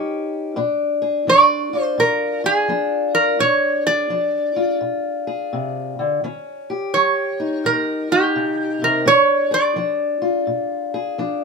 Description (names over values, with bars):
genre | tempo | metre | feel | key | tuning
acoustic country blues, solo or duo | 85 BPM | 4/4 | swing 65% on 8ths | Bb mixolydian | A4 = 440 Hz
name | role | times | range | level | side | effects
fingerpicked steel-string acoustic guitar | accompaniment | 0.0-11.4 s | Bb2 to Ab4 | -21 LUFS | left 4 dB | none
metal-body resonator slide guitar | melody | 1.3-10.4 s | G4 to D5 | -16 LUFS | right 3 dB | none
room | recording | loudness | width
moderate small room reverb, RT60 0.5 s | minimal, uncompressed stereo recording | -17 LUFS | side -4 dB against mid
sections
0.0-11.4 A section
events
none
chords
0.0 Eb7; 0.6 Bb7; 6.2 Eb7; 9.1 Bb7